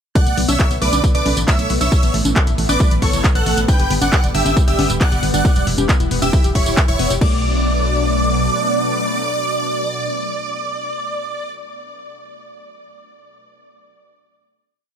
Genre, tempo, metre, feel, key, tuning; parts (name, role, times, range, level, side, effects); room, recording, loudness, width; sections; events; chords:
uplifting trance; 136 BPM; 4/4; straight; B minor; A4 = 442 Hz
big supersaw lead; melody; 0.2-11.5 s; E4 to G5; -22 LUFS; right 2 dB; phaser, sidechain pumping, tape echo
plucky unison lead; second line; 0.2-11.5 s; C#6 to G6; -27 LUFS; equal; phaser, ensemble chorus, sidechain pumping
analog string pad; sustained chords; 0.5-11.5 s; B2 to D4; -25 LUFS; left 1 dB; ensemble chorus, phaser, sidechain pumping
analog pluck; arpeggios; 0.2-7.4 s; A3 to B5; -27 LUFS; left 4 dB; chorus, sidechain pumping, digital delay
electronic kick drum; drums; 0.2-7.3 s; -15 LUFS; equal
punchy analog drum machine; drums; 0.2-7.3 s; congas, crash cymbal, handclaps, hi-hat, tambourine; -23 LUFS; equal
solid FM bass; bass; 0.3-8.5 s; D1 to B1; -21 LUFS; equal; sidechain pumping
little or no reverb; -14 LUFS; side -8 dB against mid
0.2-7.2 drop; 7.2-10.7 final chord
drop 0.2-7.2
0.2 Bm7; 1.9 Asus2; 3.7 G; 5.4 Em; 7.2 Bm7